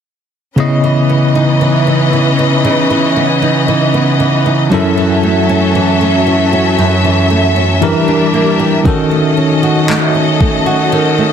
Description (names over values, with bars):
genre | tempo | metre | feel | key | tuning
contemporary R&B | 58 BPM | 4/4 | straight | C# minor | A4 = 439 Hz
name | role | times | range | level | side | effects
bell-like tine electric piano | accompaniment | 0.6-11.3 s | C#3 to D#5 | -14 LUFS | left 1 dB | medium stereo tremolo
rich studio string section | sustained chords | 0.6-11.3 s | E3 to E5 | -14 LUFS | left 3 dB | none
flamenco guitar | arpeggios | 0.6-11.3 s | F#2 to G4 | -14 LUFS | right 4 dB | none
smooth R&B drum kit | drums | 8.9-10.6 s | handclaps, kick drum | -15 LUFS | equal | none
room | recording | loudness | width
moderate small room reverb, RT60 0.5 s | dense, heavily limited modern master | -9 LUFS | side -8 dB against mid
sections
0.6-11.3 A section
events
none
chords
0.6 C#m9; 4.7 F#m7; 7.8 Em7b5; 8.9 D#m7b5